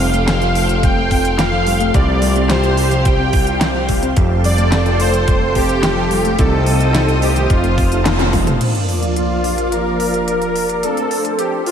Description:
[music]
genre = synthwave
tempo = 108 BPM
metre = 4/4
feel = straight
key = F mixolydian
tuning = A4 = 442 Hz
[part]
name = soft supersaw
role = melody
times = 0.0-11.7 s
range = F4 to G5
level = -20 LUFS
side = equal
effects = cassette tape, diffuse ambient delay
[part]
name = string machine, full ensemble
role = sustained chords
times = 0.0-11.7 s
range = F3 to Eb6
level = -21 LUFS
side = equal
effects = ensemble chorus, sidechain pumping
[part]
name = thumb-piano-like synth pluck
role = arpeggios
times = 0.0-8.6 s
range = Eb3 to G4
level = -25 LUFS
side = left 4 dB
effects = chorus, diffuse ambient delay
[part]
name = mellow synth brass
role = stabs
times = 0.0-11.7 s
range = F3 to A4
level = -24 LUFS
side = right 1 dB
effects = chorus, diffuse ambient delay
[part]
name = fat analog bass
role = bass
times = 0.0-8.6 s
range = F1 to C2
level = -17 LUFS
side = equal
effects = tube saturation
[part]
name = pop drum kit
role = drums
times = 0.0-11.7 s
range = crash cymbal, handclaps, hi-hat, snare drum, toms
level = -22 LUFS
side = equal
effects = none
[part]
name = electronic kick drum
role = drums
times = 0.8-8.4 s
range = none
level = -17 LUFS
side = equal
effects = none
[part]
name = sub drop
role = sound effects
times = 8.6-10.8 s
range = none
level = -22 LUFS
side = equal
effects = none
[sound]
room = moderate lush hall reverb, RT60 2.1 s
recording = dreamy mix soaked in reverb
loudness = -13 LUFS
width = side -8 dB against mid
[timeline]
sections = 0.0-8.6 A section; 8.6-11.7 B section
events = drum fill 8.1-8.6; band accent 8.1; impact 8.6-10.8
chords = 0.0 Fadd9; 1.9 Csus4; 4.2 Fadd9; 6.4 Cm; 7.5 F7; 8.6 Bb/F; 10.8 F

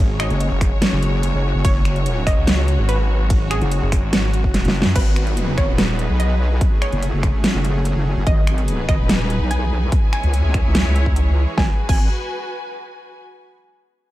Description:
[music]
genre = heavy wobble dubstep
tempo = 145 BPM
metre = 4/4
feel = half-time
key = G# phrygian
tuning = A4 = 440 Hz
[part]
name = wide unison pluck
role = melody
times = 0.0-12.0 s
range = G#4 to G#5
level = -29 LUFS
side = right 1 dB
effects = digital delay
[part]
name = supersaw pad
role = sustained chords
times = 0.0-11.8 s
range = E3 to G#4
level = -29 LUFS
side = equal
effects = sidechain pumping, low-pass filter
[part]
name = snarling distorted saw bass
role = bass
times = 0.0-4.9 s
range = F#1 to F#2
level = -19 LUFS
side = equal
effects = distortion, overdrive
[part]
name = clear studio string section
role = texture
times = 0.0-13.2 s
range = A3 to G#5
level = -29 LUFS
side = left 1 dB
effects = sidechain pumping
[part]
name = dubstep drum kit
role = drums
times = 0.2-12.0 s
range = crash cymbal, finger snaps, hi-hat, ride cymbal, snare drum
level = -22 LUFS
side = equal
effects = small room ambience
[part]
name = wobble bass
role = bass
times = 0.3-12.1 s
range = D#1 to C#2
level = -19 LUFS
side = equal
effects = chorus, overdrive
[part]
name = electronic kick drum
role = drums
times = 0.6-12.0 s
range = none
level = -18 LUFS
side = equal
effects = overdrive, small room ambience
[part]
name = downlifter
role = sound effects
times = 5.0-8.3 s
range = none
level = -33 LUFS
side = left 1 dB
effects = none
[sound]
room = little or no reverb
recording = dark, warm production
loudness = -16 LUFS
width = side -15 dB against mid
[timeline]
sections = 0.0-5.0 A section; 5.0-11.6 B section; 11.6-13.2 C section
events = drop 0.0-5.0; kick drops out 4.5-5.0; drum fill 4.5-5.0; filter sweep on wobble bass 5.0-11.6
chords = 0.0 F#sus2; 5.0 G#m7; 6.6 F#madd9; 8.3 G#m7; 9.9 C#m; 11.6 G#m7

